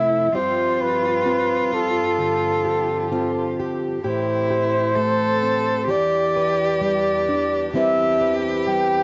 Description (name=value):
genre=acoustic folk-pop ballad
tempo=65 BPM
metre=4/4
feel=straight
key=unclear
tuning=A4 = 439 Hz
part: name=breathy flugelhorn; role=melody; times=0.0-9.0 s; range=A4 to G5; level=-23 LUFS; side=equal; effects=cassette tape, tape echo
part: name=warm cello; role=second line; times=0.0-9.0 s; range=E4 to A4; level=-27 LUFS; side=equal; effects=cassette tape
part: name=fingerpicked plugged-in steel-string acoustic guitar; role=accompaniment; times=0.0-9.0 s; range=A2 to B4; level=-28 LUFS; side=equal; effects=cassette tape
part: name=warm studio string section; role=sustained chords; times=0.0-9.0 s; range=E2 to B4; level=-37 LUFS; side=equal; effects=cassette tape
room=light reverb, studio ambience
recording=home recording on cassette, nothing above 7.7 kHz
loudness=-21 LUFS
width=mono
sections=0.0-9.0 A section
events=none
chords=0.3 G7sus4; 4.0 Am7; 5.9 Em7; 7.7 Cmaj7/E